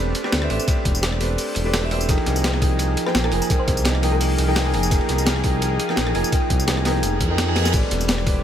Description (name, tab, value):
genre	liquid drum and bass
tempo	170 BPM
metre	4/4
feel	swing 54% on 16ths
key	unclear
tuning	A4 = 438 Hz
part	felt-muted upright piano	accompaniment	0.0-8.4 s	F3 to Ab5	-24 LUFS	right 1 dB	tape echo
part	lush unison pad	sustained chords	0.0-8.4 s	G3 to B5	-29 LUFS	equal	chorus, sidechain pumping
part	smooth synth bass	bass	0.0-8.4 s	E1 to F2	-22 LUFS	equal	none
part	breakbeat sampler-style drum kit	drums	0.1-8.3 s	crash cymbal, hi-hat, ride cymbal, rim click, snare drum, tambourine	-25 LUFS	equal	none
part	crunchy breakbeat drum kit	drums	0.1-8.4 s	hi-hat, ride cymbal, snare drum	-30 LUFS	equal	high-pass filter on cymbals, high-pass filter on hats, high-pass filter on snare, high-pass filter on room
part	electronic kick drum	drums	0.7-8.3 s	none	-21 LUFS	equal	none
part	thumb-piano-like synth pluck	melody	3.1-4.6 s	Bb4 to C5	-30 LUFS	equal	chorus, ping-pong delay
part	reverse cymbal	sound effects	7.2-7.7 s	none	-30 LUFS	right 6 dB	none
room	light reverb, studio reverb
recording	none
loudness	-18 LUFS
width	side -9 dB against mid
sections	0.0-8.4 A section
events	reverse cymbal 7.2-7.7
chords	0.0 Am11; 2.1 Fm11; 7.7 Am11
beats	0.32 | 0.68 1.03 1.38 1.74 | 2.09 2.44 2.79 3.15 | 3.50 3.85 4.21 4.56 | 4.91 5.26 5.62 5.97 | 6.32 6.68 7.03 7.38 | 7.74 8.09